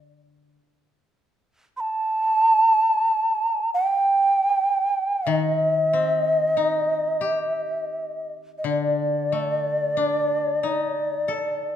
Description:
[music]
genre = japanese traditional, Japanese chamber music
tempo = free time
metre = none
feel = none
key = D in sen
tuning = A4 = 440 Hz
[part]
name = koto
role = accompaniment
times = 0.0-11.8 s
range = D3 to A4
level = -27 LUFS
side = left 5 dB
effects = none
[part]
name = mellow shakuhachi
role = melody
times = 1.8-11.8 s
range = D5 to C6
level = -20 LUFS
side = right 1 dB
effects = none
[sound]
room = moderate scoring stage reverb, RT60 1.5 s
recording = minimal, uncompressed stereo recording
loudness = -20 LUFS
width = side -10 dB against mid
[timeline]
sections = 0.0-11.8 A section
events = none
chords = none

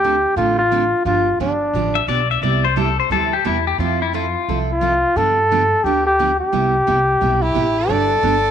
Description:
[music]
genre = country, western swing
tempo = 176 BPM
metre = 4/4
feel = swing 63% on 8ths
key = C major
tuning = A4 = 439 Hz
[part]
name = breathy flugelhorn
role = melody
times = 0.0-2.0, 4.7-8.5 s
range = D4 to A4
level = -16 LUFS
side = left 1 dB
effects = none
[part]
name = picked steel-string acoustic guitar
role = accompaniment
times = 0.0-8.3 s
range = C3 to A4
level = -24 LUFS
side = right 10 dB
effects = none
[part]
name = upright bass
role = bass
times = 0.0-8.5 s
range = G1 to G2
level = -23 LUFS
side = equal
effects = none
[part]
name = pedal steel guitar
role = second line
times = 2.0-4.6 s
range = E4 to E5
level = -19 LUFS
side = left 8 dB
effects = none
[part]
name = clear fiddle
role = second line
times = 7.4-8.5 s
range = G4 to D5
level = -24 LUFS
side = right 10 dB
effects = none
[sound]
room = moderate echo chamber reverb, RT60 1.9 s, small room ambience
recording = 1960s-style stereo with parts hard left and right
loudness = -15 LUFS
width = side -8 dB against mid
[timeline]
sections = 0.0-8.5 A section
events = none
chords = 0.0 Dm7; 1.1 G7; 2.4 Cmaj7; 3.8 Fmaj7; 5.2 G7; 6.5 Cmaj7; 7.9 G

